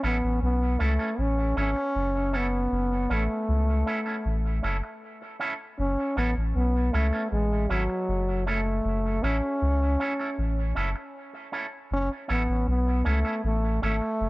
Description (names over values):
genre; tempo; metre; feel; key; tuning
roots reggae; 78 BPM; 4/4; straight; F# minor; A4 = 440 Hz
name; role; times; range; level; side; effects
breathy trombone; melody; 0.0-14.3 s; F#3 to C#4; -28 LUFS; equal; dub echo
electric guitar with an envelope filter; accompaniment; 0.0-14.1 s; C#4 to A4; -33 LUFS; right 3 dB; dub echo
soft dub sub bass; bass; 0.0-14.3 s; F#1 to C#2; -26 LUFS; equal; none
room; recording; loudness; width
light reverb, small room ambience; echo-heavy mix; -24 LUFS; side -21 dB against mid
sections
0.0-14.3 A section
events
none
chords
0.0 F#m7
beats
0.41 1.18 1.94 | 2.71 3.48 4.24 5.01 | 5.77 6.54 7.31 8.07 | 8.84 9.61 10.37 11.14 | 11.90 12.67 13.44 14.20